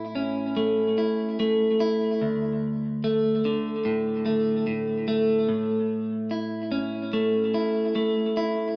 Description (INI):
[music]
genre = rock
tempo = 73 BPM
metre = 4/4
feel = straight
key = unclear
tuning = A4 = 440 Hz
[part]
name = clean electric guitar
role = arpeggios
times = 0.0-8.8 s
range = D2 to E4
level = -22 LUFS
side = equal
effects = tape echo
[sound]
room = wet studio reverb, RT60 0.8 s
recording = band playing live in one room, small speaker sound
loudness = -22 LUFS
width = side -36 dB against mid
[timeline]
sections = 0.0-8.8 A section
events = none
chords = 0.0 A; 2.2 D5; 5.5 A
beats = 0.56 1.39 | 2.21 3.03 3.85 4.67 | 5.49 6.31 7.13 7.95